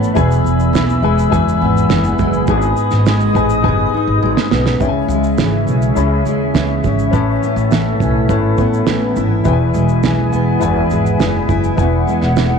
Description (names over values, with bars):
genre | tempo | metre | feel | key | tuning
acoustic pop | 103 BPM | 4/4 | straight | C# minor | A4 = 442 Hz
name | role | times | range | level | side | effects
fingerpicked steel-string acoustic guitar | accompaniment | 0.0-12.6 s | E2 to G#4 | -16 LUFS | equal | double-tracked left and right
warm upright piano | accompaniment | 0.0-12.6 s | C#4 to B5 | -23 LUFS | left 14 dB | none
bright large flute ensemble | sustained chords | 0.0-12.6 s | C#4 to E6 | -22 LUFS | left 2 dB | none
upright bass | bass | 0.0-12.6 s | E1 to D#2 | -18 LUFS | equal | none
cloth-damped thuddy drum kit | drums | 0.0-12.5 s | kick drum, shaker, snare drum | -19 LUFS | right 6 dB | none
room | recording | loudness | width
small room ambience | 1960s-style stereo with parts hard left and right | -12 LUFS | side -6 dB against mid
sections
0.0-4.8 A section; 4.8-12.6 B section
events
drum fill 3.6-4.8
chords
0.2 E; 2.5 G#m; 4.8 C#m; 7.1 Aadd9; 9.5 E